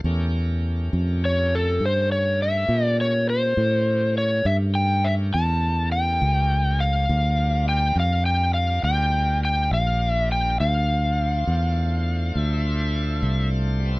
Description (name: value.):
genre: slow blues.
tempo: 68 BPM (dotted quarters).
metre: 12/8.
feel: straight.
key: unclear.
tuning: A4 = 443 Hz.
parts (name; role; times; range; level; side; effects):
fingered electric bass; bass; 0.0-14.0 s; Bb1 to Bb2; -22 LUFS; equal; none.
bright tonewheel organ; sustained chords; 0.1-14.0 s; G3 to C5; -35 LUFS; equal; overdrive, slow rotary speaker.
overdriven slide guitar; melody; 1.3-13.5 s; A4 to A5; -23 LUFS; left 1 dB; none.
room: digital ambience.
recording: rough home demo mix.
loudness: -20 LUFS.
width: side -22 dB against mid.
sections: 0.0-14.0 A section.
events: none.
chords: 0.1 A7b9; 7.1 Gm7; 10.6 Dm7.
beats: | 0.05 0.93 1.81 2.69 | 3.57 4.45 5.33 6.21 | 7.09 7.97 8.85 9.72 | 10.60 11.48 12.36 13.23.